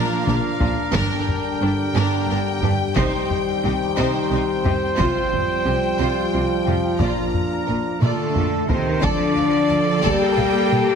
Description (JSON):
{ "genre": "cinematic, epic orchestral film score", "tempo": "59 BPM (dotted quarters)", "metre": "6/8", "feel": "straight", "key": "D phrygian", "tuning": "A4 = 439 Hz", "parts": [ { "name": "rich symphonic violin section", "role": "melody", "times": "0.0-11.0 s", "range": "A4 to Bb5", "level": "-30 LUFS", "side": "left 4 dB", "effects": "none" }, { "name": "warm symphonic violin section", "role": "second line", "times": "0.0-10.4 s", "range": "F4 to A5", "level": "-29 LUFS", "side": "left 1 dB", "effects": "none" }, { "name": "warm symphonic viola section", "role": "accompaniment", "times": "0.0-11.0 s", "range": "D4 to A4", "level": "-29 LUFS", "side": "equal", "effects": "none" }, { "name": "bright trombone section", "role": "sustained chords", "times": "0.0-10.9 s", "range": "C3 to Bb3", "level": "-27 LUFS", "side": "right 2 dB", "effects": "none" }, { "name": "warm French horn section", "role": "sustained chords", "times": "0.0-11.0 s", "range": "A3 to G4", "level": "-24 LUFS", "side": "left 5 dB", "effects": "none" }, { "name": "mellow trumpet", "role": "stabs", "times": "0.0-11.0 s", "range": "A4 to G5", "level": "-27 LUFS", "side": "right 4 dB", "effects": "none" }, { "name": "bright symphonic double bass section", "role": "bass", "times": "0.3-10.5 s", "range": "G1 to D2", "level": "-27 LUFS", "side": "right 3 dB", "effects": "none" }, { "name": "rich symphonic cello section", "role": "bass", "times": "0.3-11.0 s", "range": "G2 to Bb3", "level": "-26 LUFS", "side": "right 3 dB", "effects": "none" }, { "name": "taiko ensemble", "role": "drums", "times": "0.3-11.0 s", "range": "none", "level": "-25 LUFS", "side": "left 1 dB", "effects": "none" } ], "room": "wet scoring stage reverb, RT60 1.5 s", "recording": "heavily compressed radio sound", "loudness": "-18 LUFS", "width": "side -6 dB against mid", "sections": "0.0-9.0 A section; 9.0-11.0 B section", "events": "drum fill 0.0-0.9, 8.0-9.0", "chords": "0.0 Bb; 0.9 Gm; 3.0 Cm; 5.0 Fsus2; 7.0 Bb; 9.0 Dm" }